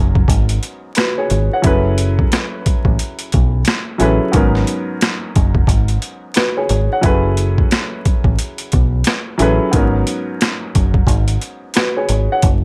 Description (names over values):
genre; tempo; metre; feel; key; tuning
hip hop, boom-bap hip-hop; 89 BPM; 4/4; swing 61% on 16ths; unclear; A4 = 440 Hz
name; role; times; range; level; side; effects
dark grand piano; accompaniment; 0.0-12.4 s; G#2 to F#5; -22 LUFS; equal; cassette tape, high-pass filter, low-pass filter
deep dub fingered electric bass; bass; 0.0-12.6 s; F#1 to B1; -18 LUFS; equal; none
boom bap sampler-style drum kit; drums; 0.2-12.6 s; hi-hat, kick drum, rim click, snare drum; -18 LUFS; equal; overdrive
room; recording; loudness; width
little or no reverb; vinyl crackle; -16 LUFS; mono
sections
0.0-12.6 A section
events
none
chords
0.0 G#m11; 1.6 F#m11; 4.3 G#m11; 7.0 F#m11; 9.7 G#m11